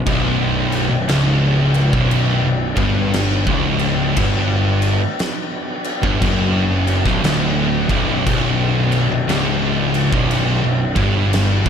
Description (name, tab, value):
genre	stoner and doom metal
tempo	59 BPM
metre	4/4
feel	swing 64% on 8ths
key	B minor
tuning	A4 = 440 Hz
part	overdriven tonewheel organ	sustained chords	0.0-11.7 s	F#3 to D4	-30 LUFS	equal	none
part	heavy high-gain guitar	riff	0.0-11.7 s	B1 to G2	-23 LUFS	equal	distortion
part	thick fuzz guitar	riff	0.0-11.7 s	B1 to G2	-20 LUFS	left 7 dB	distortion
part	thick fuzz guitar	riff	0.0-11.7 s	B1 to G2	-20 LUFS	right 7 dB	distortion
part	fuzz picked electric bass	bass	0.0-11.7 s	B0 to G1	-24 LUFS	equal	overdrive
part	oversized low-tuned drum kit	drums	0.1-11.7 s	crash cymbal, kick drum, snare drum	-22 LUFS	equal	none
room	light reverb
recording	none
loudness	-15 LUFS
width	side -7 dB against mid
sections	0.0-11.7 A section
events	none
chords	0.0 Bm